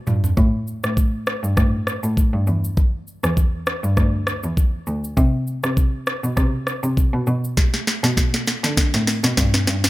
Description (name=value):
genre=afrobeats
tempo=100 BPM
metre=4/4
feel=swing 55% on 16ths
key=unclear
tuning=A4 = 439 Hz
part: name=rich cello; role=bass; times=0.1-9.9 s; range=D2 to D3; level=-21 LUFS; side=equal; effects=none
part: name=afro-pop drum kit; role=drums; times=0.1-9.9 s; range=hi-hat, kick drum, rim click, shaker, snare drum, toms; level=-19 LUFS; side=equal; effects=none
room=little or no reverb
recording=none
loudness=-18 LUFS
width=side -17 dB against mid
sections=0.0-9.9 A section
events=drum fill 0.0-0.4, 7.6-9.9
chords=none